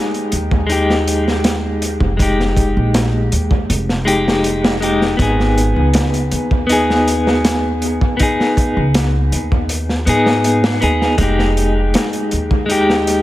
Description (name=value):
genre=trip hop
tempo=80 BPM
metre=4/4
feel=straight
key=F minor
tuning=A4 = 440 Hz
part: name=clean electric guitar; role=accompaniment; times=0.0-13.2 s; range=Ab3 to Ab4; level=-16 LUFS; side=left 1 dB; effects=tremolo, low-pass filter, dub echo
part: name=crunchy breakbeat drum kit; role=drums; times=0.1-13.2 s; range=hi-hat, kick drum, snare drum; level=-19 LUFS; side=equal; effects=dub echo
part: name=upright bass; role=bass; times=0.3-13.2 s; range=F1 to Ab2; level=-19 LUFS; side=equal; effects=none
room=light reverb, small room ambience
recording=echo-heavy mix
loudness=-13 LUFS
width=side -15 dB against mid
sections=0.0-13.2 A section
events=none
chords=0.0 Fm7; 5.2 Abm; 11.2 Fm7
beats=0.69 1.44 | 2.19 2.94 3.69 4.44 | 5.19 5.94 6.69 7.44 | 8.19 8.94 9.69 10.44 | 11.19 11.94 12.69